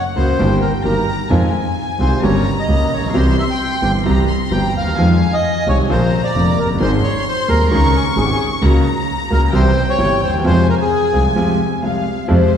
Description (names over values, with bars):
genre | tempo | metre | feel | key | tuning
tango | 131 BPM | 4/4 | rubato | F minor | A4 = 440 Hz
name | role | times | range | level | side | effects
bandoneon | melody | 0.0-11.2 s | G4 to G5 | -20 LUFS | equal | none
warm chamber violin section | second line | 0.0-12.6 s | C5 to Db6 | -23 LUFS | left 4 dB | none
clear grand piano | accompaniment | 0.2-12.5 s | Eb1 to Ab4 | -18 LUFS | equal | none
clear double bass | bass | 0.2-12.5 s | F1 to F2 | -17 LUFS | equal | none
room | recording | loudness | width
wet concert hall reverb, RT60 2.1 s | heard from further back in the room | -13 LUFS | side -8 dB against mid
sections
0.0-12.3 A section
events
break 11.4-12.3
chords
0.4 Eb/G; 1.3 Fm7; 2.2 Gdim; 3.1 C; 5.0 Fm7; 5.9 Bb; 6.8 Ab; 7.7 Dbsus2; 8.6 Gb/Db; 9.5 C; 10.5 Fm